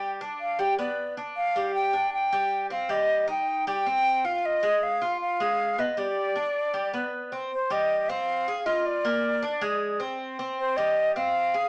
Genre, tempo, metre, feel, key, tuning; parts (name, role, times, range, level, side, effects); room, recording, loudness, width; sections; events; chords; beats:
latin; 156 BPM; 4/4; straight; C minor; A4 = 440 Hz
breathy silver concert flute; melody; 0.0-11.7 s; C5 to G5; -24 LUFS; equal
Cuban tres; arpeggios; 0.0-11.7 s; G3 to Ab4; -30 LUFS; equal
moderate studio reverb, RT60 0.7 s; small speaker sound; -24 LUFS; side -29 dB against mid
0.0-7.5 A section; 7.5-11.7 B section
0.0 G; 2.9 Cm; 4.4 Fm; 6.0 G; 7.5 Cm; 8.3 Fm; 9.1 Bb; 9.8 Ab; 10.6 Cm
0.21 0.59 0.98 | 1.36 1.75 2.13 2.52 | 2.90 3.29 3.67 4.05 | 4.44 4.82 5.21 5.59 | 5.98 6.36 6.75 7.13 | 7.51 7.90 8.28 8.67 | 9.05 9.44 9.82 10.20 | 10.59 10.97 11.35